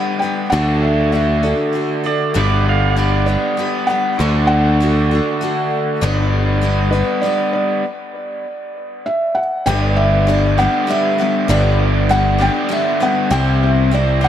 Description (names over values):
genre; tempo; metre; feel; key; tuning
rock; 98 BPM; 3/4; straight; unclear; A4 = 444 Hz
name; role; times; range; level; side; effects
felt-muted upright piano; melody; 0.0-14.3 s; B4 to G5; -20 LUFS; equal; dub echo
picked steel-string acoustic guitar; accompaniment; 0.0-14.3 s; G2 to C5; -23 LUFS; left 5 dB; dub echo
raw garage guitar; riff; 0.0-14.3 s; G2 to B4; -20 LUFS; right 1 dB; overdrive, dub echo
picked electric bass; bass; 0.5-14.3 s; G1 to D2; -16 LUFS; equal; none
pedal steel guitar; second line; 2.1-3.3 s; D5 to F5; -26 LUFS; right 6 dB; dub echo
room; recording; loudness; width
moderate spring reverb, RT60 2.5 s; echo-heavy mix; -14 LUFS; side -10 dB against mid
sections
0.0-9.7 A section; 9.7-14.3 B section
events
stop 7.8-9.7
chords
0.0 G; 0.5 D; 2.4 G; 4.2 D; 6.0 G; 7.8 N.C.; 9.7 G; 13.3 C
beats
| 0.52 1.13 1.74 | 2.35 2.96 3.58 | 4.19 4.80 5.41 | 6.02 6.63 7.24 | 7.85 8.46 9.06 | 9.67 10.28 10.89 | 11.49 12.10 12.70 | 13.31 13.91